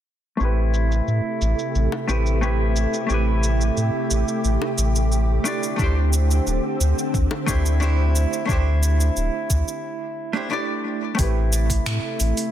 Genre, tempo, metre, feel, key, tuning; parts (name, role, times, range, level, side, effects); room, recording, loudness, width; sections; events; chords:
sunset chillout; 89 BPM; 4/4; straight; A minor; A4 = 442 Hz
vintage hollow-body jazz guitar; accompaniment; 0.4-12.5 s; A3 to D5; -26 LUFS; right 2 dB; auto-pan, low-pass filter, ping-pong delay
soft string machine; sustained chords; 0.8-12.5 s; C3 to G4; -28 LUFS; equal; phaser, ensemble chorus
warm sub bass; bass; 0.4-12.3 s; D1 to A2; -20 LUFS; equal
smooth R&B drum kit; drums; 0.4-12.5 s; cabasa, finger snaps, hi-hat; -29 LUFS; right 1 dB; low-pass filter on perc, low-pass filter on hats, soft clipping on snare, low-pass filter on snare
bongos; percussion; 1.9-7.4 s; -30 LUFS; left 6 dB
electronic kick drum; drums; 5.8-11.8 s; -23 LUFS; equal
light reverb; dense, heavily limited modern master; -19 LUFS; side -11 dB against mid
0.4-11.2 A section; 11.2-12.5 B section
filter sweep on sub bass 0.4-11.2; break 9.8-11.2; filter sweep on hollow-body jazz guitar 11.2-12.5
0.4 Am7; 5.5 D7sus4; 11.2 Am7